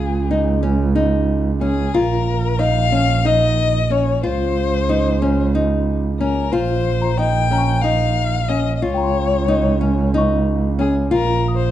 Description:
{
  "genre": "contemporary instrumental, chamber music in an uneven meter",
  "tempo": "183 BPM (eighths)",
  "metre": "7/8",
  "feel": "straight",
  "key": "Db lydian",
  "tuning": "A4 = 441 Hz",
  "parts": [
    { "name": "warm violin", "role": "melody", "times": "0.0-11.7 s", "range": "Ab4 to G5", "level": "-22 LUFS", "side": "left 6 dB", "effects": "none" },
    { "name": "nylon-string guitar", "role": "arpeggios", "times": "0.0-11.7 s", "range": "Db4 to F4", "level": "-21 LUFS", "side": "left 2 dB", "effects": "none" },
    { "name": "rich double bass", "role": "bass", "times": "0.0-11.7 s", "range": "Bb1 to Db2", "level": "-18 LUFS", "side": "right 3 dB", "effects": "none" },
    { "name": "small celesta", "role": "texture", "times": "7.0-11.7 s", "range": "G5 to Eb6", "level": "-29 LUFS", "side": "left 7 dB", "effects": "none" }
  ],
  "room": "moderate recital hall reverb, RT60 1.3 s",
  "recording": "dark, warm production, nothing above 11.0 kHz",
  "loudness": "-15 LUFS",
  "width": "side -12 dB against mid",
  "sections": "0.0-11.7 A section",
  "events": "none",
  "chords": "0.0 Db5; 1.9 Bbm; 4.2 Dbmaj7; 6.5 Bbm; 8.8 Dbmaj7; 11.1 Bbm"
}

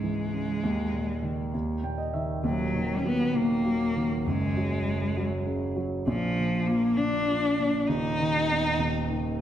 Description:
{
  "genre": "pop",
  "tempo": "66 BPM (dotted quarters)",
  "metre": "6/8",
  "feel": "straight",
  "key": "unclear",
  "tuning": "A4 = 440 Hz",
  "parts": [
    { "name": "dark cello", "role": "melody", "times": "0.0-9.4 s", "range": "E#3 to D#4", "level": "-27 LUFS", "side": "left 1 dB", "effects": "none" },
    { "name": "dark grand piano", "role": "accompaniment", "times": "0.0-9.4 s", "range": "D#1 to G5", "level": "-28 LUFS", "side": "right 1 dB", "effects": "none" }
  ],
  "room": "wet scoring stage reverb, RT60 1.5 s",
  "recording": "none",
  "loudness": "-25 LUFS",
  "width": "side -10 dB against mid",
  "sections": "0.0-2.4 A section; 2.4-9.4 B section",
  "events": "grand piano fill 1.5-2.4",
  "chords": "0.0 C#m; 0.6 D#5; 2.4 D#m; 4.3 F#sus2; 6.1 A#; 7.9 B/D#; 8.8 D#5"
}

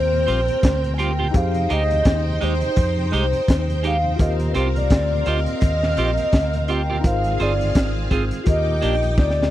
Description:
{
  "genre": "lovers rock reggae",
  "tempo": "84 BPM",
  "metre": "4/4",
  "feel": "swing 58% on 16ths",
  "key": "Eb major",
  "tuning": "A4 = 440 Hz",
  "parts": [
    { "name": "hollow clarinet-like synth lead", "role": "melody", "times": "0.0-9.5 s", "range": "Cb5 to Ab5", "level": "-23 LUFS", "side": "equal", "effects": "chorus, tape echo" },
    { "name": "string machine, violins", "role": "second line", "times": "0.0-9.5 s", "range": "C4 to D6", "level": "-29 LUFS", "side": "equal", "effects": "ensemble chorus, slapback echo" },
    { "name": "tine electric piano", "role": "accompaniment", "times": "0.0-9.5 s", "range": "C4 to C5", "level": "-31 LUFS", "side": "left 4 dB", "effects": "overdrive, fast stereo tremolo" },
    { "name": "vintage muted fingered electric bass", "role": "bass", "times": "0.0-9.5 s", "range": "G1 to F2", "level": "-22 LUFS", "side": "equal", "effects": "none" },
    { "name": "mellow tonewheel organ", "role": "accompaniment", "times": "0.1-9.5 s", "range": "Eb2 to Ab4", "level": "-31 LUFS", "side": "right 2 dB", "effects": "none" },
    { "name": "clean electric guitar", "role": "stabs", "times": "0.3-9.1 s", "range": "Ab3 to Ab4", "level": "-24 LUFS", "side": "right 5 dB", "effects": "none" },
    { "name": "crunchy breakbeat drum kit", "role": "drums", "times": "0.3-9.5 s", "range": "hi-hat, kick drum, snare drum", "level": "-19 LUFS", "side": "equal", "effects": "none" }
  ],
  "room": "little or no reverb",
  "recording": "dry, close 1970s-style studio recording",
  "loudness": "-17 LUFS",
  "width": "side -13 dB against mid",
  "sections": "0.0-9.5 A section",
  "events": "drum fill 9.2-9.5",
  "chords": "0.0 Eb69; 1.3 Fm9; 4.2 Eb69; 7.0 Ab6; 8.5 Ebmaj7"
}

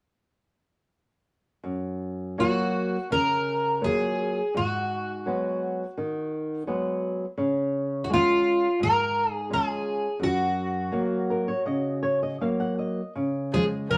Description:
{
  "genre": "fado-style ballad",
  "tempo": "83 BPM",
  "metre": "4/4",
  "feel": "rubato",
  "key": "F# major",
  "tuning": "A4 = 440 Hz",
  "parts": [
    { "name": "flamenco guitar", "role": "accompaniment", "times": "1.6-14.0 s", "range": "F#2 to F#5", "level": "-30 LUFS", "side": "equal", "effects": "none" },
    { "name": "fingerpicked twelve-string acoustic guitar", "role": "melody", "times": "2.4-14.0 s", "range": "E#4 to A#4", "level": "-28 LUFS", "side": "equal", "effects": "none" },
    { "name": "dark cello", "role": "second line", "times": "13.5-14.0 s", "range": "F3", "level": "-31 LUFS", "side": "equal", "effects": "none" }
  ],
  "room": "moderate studio reverb, RT60 0.6 s",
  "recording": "none",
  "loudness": "-27 LUFS",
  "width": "mono",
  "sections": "1.6-13.1 A section",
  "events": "nylon-string guitar fill 10.9-13.1",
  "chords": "1.6 F#maj7; 4.5 G#m7; 7.4 C#; 10.2 F#maj7; 13.1 Db"
}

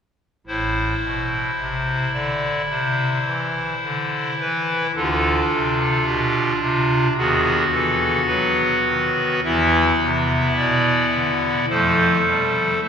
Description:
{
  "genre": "classical, chorale-style piece for pipe organ",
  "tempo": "53 BPM",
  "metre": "4/4",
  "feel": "rubato",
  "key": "A minor",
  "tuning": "A4 = 440 Hz",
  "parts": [
    { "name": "pipe organ, clarinet reed", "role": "solo", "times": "0.5-12.9 s", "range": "A1 to E5", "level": "-17 LUFS", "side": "equal", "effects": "none" }
  ],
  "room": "wet cathedral reverb, RT60 6.2 s",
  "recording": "recorded in a church or concert hall",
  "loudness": "-17 LUFS",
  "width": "side -7 dB against mid",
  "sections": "0.5-12.9 A section",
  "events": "none",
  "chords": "0.5 Am; 4.9 Dm; 7.2 B/D#; 9.4 E5; 11.7 F"
}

